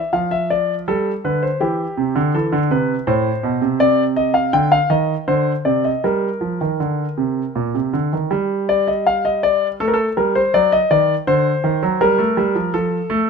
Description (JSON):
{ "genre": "classical, baroque-style two-part invention for grand piano", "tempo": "82 BPM", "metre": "3/4", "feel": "straight", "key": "G minor from 3.8 s", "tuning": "A4 = 441 Hz", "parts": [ { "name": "warm concert grand piano", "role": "solo", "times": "0.0-13.3 s", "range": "A2 to G5", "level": "-16 LUFS", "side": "equal", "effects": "none" } ], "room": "light reverb", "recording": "close, detailed microphones", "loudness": "-16 LUFS", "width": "side -5 dB against mid", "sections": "0.0-8.3 A section; 8.3-13.3 B section", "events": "none", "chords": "0.0 Dm; 0.9 G; 1.6 C; 3.1 Amadd9; 3.8 Cmadd9; 6.0 Gm (rootless); 8.3 G5; 9.8 Gmadd9; 10.5 D7; 12.0 Gm; 12.7 F" }